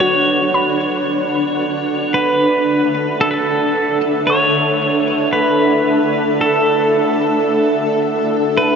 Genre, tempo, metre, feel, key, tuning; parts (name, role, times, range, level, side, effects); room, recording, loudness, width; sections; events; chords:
ambient; 56 BPM; 4/4; straight; D major; A4 = 441 Hz
pedal steel guitar; melody; 0.0-8.8 s; A4 to C#5; -17 LUFS; equal; tape echo
granular cloud pad; sustained chords; 0.0-8.8 s; D4 to F#5; -16 LUFS; right 1 dB; built-in reverb
soft round pluck; arpeggios; 0.0-8.3 s; F#3 to C#6; -26 LUFS; left 1 dB; chorus, tape echo
wet huge ambient reverb, RT60 8.4 s; nothing above 7.5 kHz; -13 LUFS; side -6 dB against mid
0.0-8.8 A section
0.0 Dmaj9